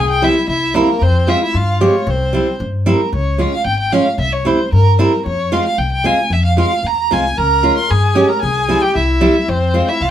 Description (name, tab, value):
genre	klezmer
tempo	113 BPM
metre	2/4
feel	straight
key	C phrygian dominant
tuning	A4 = 440 Hz
part	warm violin	melody	0.0-10.1 s	Bb4 to C6	-18 LUFS	right 2 dB	none
part	accordion	second line	0.0-2.6, 7.4-10.1 s	Bb3 to Bb4	-20 LUFS	left 4 dB	none
part	upright bass	bass	0.0-10.1 s	Ab1 to G2	-17 LUFS	left 1 dB	none
part	nylon-string guitar	accompaniment	0.2-9.9 s	G3 to G4	-15 LUFS	right 1 dB	none
room	wet studio reverb, RT60 0.5 s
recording	band playing live in one room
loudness	-12 LUFS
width	side -10 dB against mid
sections	0.0-3.1 A section; 3.1-10.1 A section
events	none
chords	0.0 C; 1.0 Fm; 2.1 C; 3.1 Db; 4.2 C; 5.2 Fm; 7.4 Db; 8.4 C; 9.5 Fm